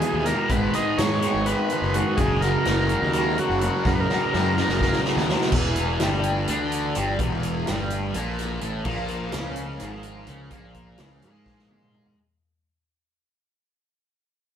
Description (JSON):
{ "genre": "psychedelic rock", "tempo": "252 BPM (eighths)", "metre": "7/8", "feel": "straight", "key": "E lydian", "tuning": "A4 = 440 Hz", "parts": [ { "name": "combo organ", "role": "melody", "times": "0.0-5.0 s", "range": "F#4 to D#5", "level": "-26 LUFS", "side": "equal", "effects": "none" }, { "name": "bright tonewheel organ", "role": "sustained chords", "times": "0.0-12.1 s", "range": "E3 to B5", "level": "-34 LUFS", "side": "right 3 dB", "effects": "none" }, { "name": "fuzz guitar", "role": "riff", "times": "0.0-12.2 s", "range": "E2 to G#4", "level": "-25 LUFS", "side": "equal", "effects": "distortion, phaser" }, { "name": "fuzz picked electric bass", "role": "bass", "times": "0.0-12.1 s", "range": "E1 to G#2", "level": "-28 LUFS", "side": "equal", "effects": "overdrive" }, { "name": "vintage drum kit", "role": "drums", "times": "0.0-12.2 s", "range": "crash cymbal, hi-hat, kick drum, snare drum, toms", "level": "-28 LUFS", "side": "equal", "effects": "none" } ], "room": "wet stone room reverb, RT60 1.1 s", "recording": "band playing live in one room", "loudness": "-21 LUFS", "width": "side -9 dB against mid", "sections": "0.0-5.5 A section; 5.5-12.2 B section", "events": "drum fill 3.9-5.5, 11.5-12.2; fade-out 5.5-12.2", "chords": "0.0 Emaj7; 0.5 G#m; 2.2 F#add9; 5.5 E; 8.9 A#5", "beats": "0.03 0.27 | 0.51 0.74 0.98 1.23 1.46 1.70 1.94 | 2.18 2.42 2.66 2.90 3.14 3.38 3.62 | 3.86 4.09 4.33 4.57 4.81 5.05 5.29 | 5.53 5.76 6.00 6.24 6.48 6.72 6.95 | 7.19 7.43 7.67 7.90 8.14 8.38 8.62 | 8.85 9.09 9.33 9.57 9.80 10.04 10.28 | 10.52 10.75 10.99 11.23 11.46 11.70 11.94" }